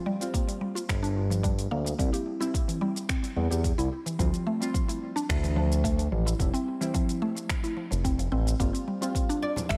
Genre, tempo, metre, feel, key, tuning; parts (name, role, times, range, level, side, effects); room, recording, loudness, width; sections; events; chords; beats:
organic downtempo; 109 BPM; 4/4; straight; G dorian; A4 = 440 Hz
deep mellow chord stab; accompaniment; 0.0-9.8 s; G3 to F4; -38 LUFS; equal; chorus, phaser, sidechain pumping, tape echo
mallet-like synth pluck; arpeggios; 0.0-9.8 s; E3 to G4; -34 LUFS; equal; chorus, phaser, cassette tape, tape echo
deep house drum kit; drums; 0.2-9.8 s; finger snaps, hi-hat, shaker; -39 LUFS; equal
electronic kick drum; drums; 0.3-9.8 s; -32 LUFS; equal
smooth synth bass; bass; 0.9-9.8 s; F1 to E2; -30 LUFS; equal; sidechain pumping
oud; melody; 9.4-9.8 s; D5 to E5; -33 LUFS; equal
congas; percussion; 9.6-9.7 s; -41 LUFS; equal
moderate plate reverb, RT60 2.2 s; dreamy mix soaked in reverb; -28 LUFS; mono
0.0-9.8 A section
0.0 Gm7; 2.0 C; 4.2 Dmadd9; 6.4 Fmaj7; 8.6 G7(no3)
0.34 0.89 1.44 | 1.99 2.54 3.09 3.64 | 4.19 4.74 5.29 5.84 | 6.40 6.95 7.50 8.05 | 8.60 9.15 9.70